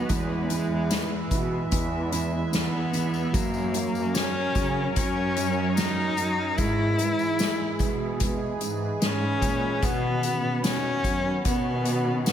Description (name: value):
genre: pop ballad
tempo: 74 BPM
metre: 4/4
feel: straight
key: unclear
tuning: A4 = 439 Hz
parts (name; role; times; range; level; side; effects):
- warm cello; melody; 0.0-12.3 s; G#3 to E4; -28 LUFS; left 2 dB; slapback echo, ping-pong delay
- felt-muted upright piano; accompaniment; 0.0-12.3 s; B2 to F#4; -31 LUFS; right 4 dB; slapback echo
- sweeping resonant pad; sustained chords; 0.0-12.3 s; D#3 to E5; -33 LUFS; equal; chorus
- muted symphonic cello section; bass; 0.0-12.3 s; E2 to C#3; -30 LUFS; equal; none
- soft-mallet drum kit; drums; 0.1-12.3 s; hi-hat, kick drum, snare drum; -28 LUFS; equal; none
- tambourine; percussion; 0.1-12.3 s; none; -42 LUFS; left 7 dB; none
room: moderate lush hall reverb, RT60 2.2 s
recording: big arena sound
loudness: -23 LUFS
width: side -9 dB against mid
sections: 0.0-12.3 A section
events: none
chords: 0.1 E; 3.3 F#; 6.6 E/G#; 9.8 Badd9